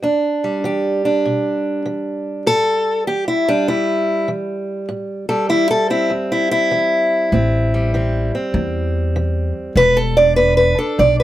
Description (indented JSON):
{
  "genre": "acoustic country blues, solo or duo",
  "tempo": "99 BPM",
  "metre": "4/4",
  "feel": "swing 66% on 8ths",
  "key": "unclear",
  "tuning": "A4 = 441 Hz",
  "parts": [
    { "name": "fingerpicked steel-string acoustic guitar", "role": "melody", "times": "0.0-11.2 s", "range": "E2 to D5", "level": "-16 LUFS", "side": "equal", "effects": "none" },
    { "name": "upright bass", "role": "bass", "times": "7.3-11.2 s", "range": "E1 to E2", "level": "-18 LUFS", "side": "equal", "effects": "none" }
  ],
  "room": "little or no reverb",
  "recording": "close, detailed microphones",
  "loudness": "-15 LUFS",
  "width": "side -13 dB against mid",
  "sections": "0.0-11.2 A section",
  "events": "steel-string acoustic guitar solo 0.0-11.2",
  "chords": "0.0 Em7; 2.5 Am7; 9.8 Em7"
}